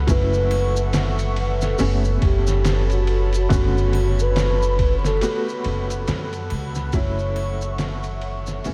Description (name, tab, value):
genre	trip hop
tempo	70 BPM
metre	4/4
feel	swing 59% on 16ths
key	F# phrygian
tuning	A4 = 440 Hz
part	warm upright piano	accompaniment	0.0-8.7 s	D3 to G4	-31 LUFS	equal	tremolo, tape echo
part	warbly tape-like pad	sustained chords	0.0-8.7 s	A4 to C#6	-33 LUFS	equal	chorus, built-in reverb, phaser
part	upright bass	bass	0.0-8.7 s	F#1 to F#2	-24 LUFS	equal	none
part	pure breathy sine lead	melody	0.1-7.7 s	F#4 to C#5	-28 LUFS	equal	chorus, vintage 12-bit sampler grit, tape echo
part	trip hop sampler-style drum kit	drums	0.1-8.7 s	hi-hat, kick drum, ride cymbal, snare drum	-28 LUFS	equal	studio ambience
part	maracas and triangle	percussion	0.1-8.7 s	none	-42 LUFS	equal	none
room	light reverb, small room ambience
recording	vinyl crackle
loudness	-21 LUFS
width	mono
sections	0.0-8.7 A section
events	fade-out 4.6-8.7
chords	0.1 F#m7; 1.8 A9/F#; 3.5 Bm9/F#; 5.2 Gmaj9/F#; 6.9 F#m7